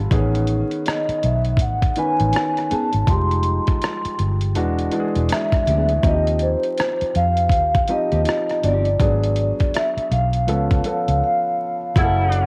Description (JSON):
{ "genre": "R&B, neo-soul", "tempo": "81 BPM", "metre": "4/4", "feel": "swing 61% on 16ths", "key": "unclear", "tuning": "A4 = 440 Hz", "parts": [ { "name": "warm concert grand piano", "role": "accompaniment", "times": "0.0-12.5 s", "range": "D#3 to B4", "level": "-28 LUFS", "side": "equal", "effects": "cassette tape" }, { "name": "vintage muted fingered electric bass", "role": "bass", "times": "0.0-12.5 s", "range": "E1 to E#2", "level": "-23 LUFS", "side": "equal", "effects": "none" }, { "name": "dusty soul sampler-style drum kit", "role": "drums", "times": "0.1-12.5 s", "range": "hi-hat, kick drum, rim click", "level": "-24 LUFS", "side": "equal", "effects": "cassette tape" }, { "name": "vibraphone with soft mallets", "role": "melody", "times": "0.9-12.5 s", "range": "B#4 to C6", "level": "-24 LUFS", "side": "equal", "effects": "cassette tape" }, { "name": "nylon-string guitar", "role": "second line", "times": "2.3-8.9 s", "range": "D#3 to G#4", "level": "-32 LUFS", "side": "equal", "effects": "cassette tape" }, { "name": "warm saxophone section", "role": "stabs", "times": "12.0-12.5 s", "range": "C#3 to E4", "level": "-28 LUFS", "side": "equal", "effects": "cassette tape" } ], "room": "moderate spring reverb, RT60 2.2 s", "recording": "home recording on cassette, vinyl crackle", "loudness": "-20 LUFS", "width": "mono", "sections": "0.0-12.0 A section", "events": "break 11.2-12.0", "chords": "0.1 Amaj9#11; 3.1 Fm9; 4.6 E9; 6.0 D#69; 9.0 G#m7b5; 10.5 C#7b13", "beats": "| 0.11 0.85 1.59 2.33 | 3.07 3.81 4.55 5.30 | 6.04 6.78 7.52 8.26 | 9.00 9.74 10.48 11.22 | 11.96" }